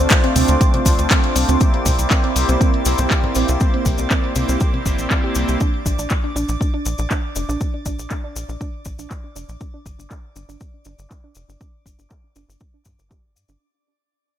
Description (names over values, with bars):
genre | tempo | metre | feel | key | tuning
progressive house | 120 BPM | 4/4 | straight | unclear | A4 = 440 Hz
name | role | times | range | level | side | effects
soft round pluck | arpeggios | 0.0-13.5 s | C4 to F5 | -26 LUFS | right 4 dB | chorus, sidechain pumping, dub echo
soft supersaw | stabs | 0.0-5.6 s | A3 to C5 | -22 LUFS | left 1 dB | phaser, sidechain pumping, dub echo
tight sequencer bass | bass | 0.0-13.6 s | F1 to G2 | -21 LUFS | equal | sidechain pumping
drifting glass-harmonics texture | texture | 0.0-13.6 s | D5 to D6 | -31 LUFS | equal | chorus, built-in reverb, sidechain pumping
electronic kick drum | drums | 0.1-13.2 s | none | -19 LUFS | equal | overdrive
house drum kit | drums | 0.1-13.6 s | handclaps, hi-hat | -24 LUFS | left 1 dB | overdrive, low-pass filter on hats, low-pass filter on snare, low-pass filter on cymbals, low-pass filter on toms
maracas | percussion | 0.1-13.6 s | none | -29 LUFS | left 4 dB | none
congas | percussion | 0.4-4.8 s | none | -27 LUFS | left 2 dB | sidechain pumping on perc
room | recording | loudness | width
light reverb | none | -16 LUFS | side -10 dB against mid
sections
0.0-13.6 A section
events
fade-out 0.0-13.6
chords
0.0 Dm7; 1.6 C7; 5.6 Bb; 9.6 G5